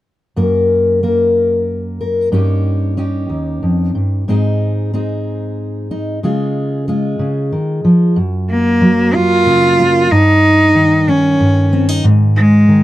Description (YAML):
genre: folk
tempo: 62 BPM (dotted quarters)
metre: 6/8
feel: straight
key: unclear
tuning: A4 = 441 Hz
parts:
  - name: fingerpicked steel-string acoustic guitar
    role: accompaniment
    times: 0.4-12.8 s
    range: Eb2 to Bb4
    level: -13 LUFS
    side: equal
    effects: none
  - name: rich cello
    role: melody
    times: 8.5-12.8 s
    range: Ab3 to F4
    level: -11 LUFS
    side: equal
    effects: none
room: little or no reverb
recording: dry, close 1970s-style studio recording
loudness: -11 LUFS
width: side -15 dB against mid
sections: 0.4-8.2 A section; 8.2-12.8 B section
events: none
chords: 0.4 Gb; 2.3 Eb7/G; 4.3 Ab; 6.2 Db; 8.2 Gb; 10.1 Eb7/G; 12.0 Ab5